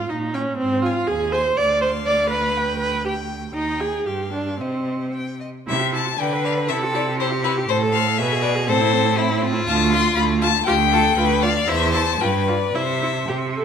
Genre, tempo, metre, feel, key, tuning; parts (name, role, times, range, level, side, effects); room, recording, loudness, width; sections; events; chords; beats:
quick classical-period movement for string quartet; 110-123 BPM; 2/4; rubato; C minor, C major from 5.7 s; A4 = 439 Hz
warm violin; melody; 0.0-13.3 s; B4 to D6; -24 LUFS; left 11 dB
warm viola; accompaniment; 0.0-13.6 s; C4 to D5; -24 LUFS; right 2 dB
clear cello; bass; 0.1-13.6 s; D2 to D3; -23 LUFS; right 5 dB
rich violin; second line; 0.3-13.6 s; E4 to Ab5; -25 LUFS; left 3 dB
moderate recital hall reverb, RT60 1.5 s; -18 LUFS; side -7 dB against mid
0.0-5.7 A section; 5.7-13.6 A section
0.1 Gdim/Bb (rootless); 0.6 Ab5; 1.6 Dm7; 2.6 G5/D; 3.6 Ebadd11; 4.1 G5; 4.6 Cm; 5.7 C; 6.2 Bm/D; 6.7 C; 7.7 Am; 8.2 G#m/B; 8.7 Am; 9.7 Dm; 11.7 C/E; 12.2 G7; 12.7 C
0.09 | 0.59 1.09 | 1.58 2.08 | 2.57 3.06 | 3.56 4.08 | 4.61 5.14 | 5.68 6.20 | 6.70 7.20 | 7.70 8.19 | 8.69 9.19 | 9.68 10.18 | 10.67 11.18 | 11.69 12.21 | 12.74 13.29